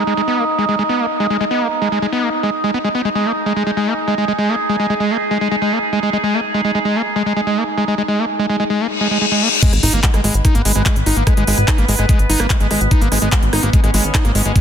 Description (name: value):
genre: psychedelic trance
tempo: 146 BPM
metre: 4/4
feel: straight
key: G# minor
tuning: A4 = 440 Hz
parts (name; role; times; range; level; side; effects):
- overtone-sweeping drone; sustained chords; 0.0-14.6 s; B3 to D#5; -21 LUFS; right 2 dB; chorus, built-in reverb, sidechain pumping
- screaming distorted acid line; riff; 0.0-14.6 s; G#3 to D#4; -18 LUFS; equal; distortion, chorus, auto-pan, sidechain pumping, tape echo
- reverse cymbal and impact; sound effects; 8.9-11.3 s; none; -19 LUFS; left 4 dB; none
- drum and bass drum kit; drums; 9.6-14.6 s; crash cymbal, handclaps, hi-hat, rim click; -20 LUFS; equal; low-pass filter on hats, low-pass filter on snare, low-pass filter on cymbals, low-pass filter on room
- electronic kick drum; drums; 9.6-14.6 s; none; -14 LUFS; equal; none
- plucky analog bass; bass; 9.7-14.5 s; G#1; -18 LUFS; equal; none
room: light reverb, digital ambience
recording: dense, heavily limited modern master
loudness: -14 LUFS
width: side -8 dB against mid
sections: 0.0-9.6 A section; 9.6-14.6 B section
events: reverse cymbal 8.9-9.6; drop 9.6-14.6; impact 9.6-11.3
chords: 0.0 G#5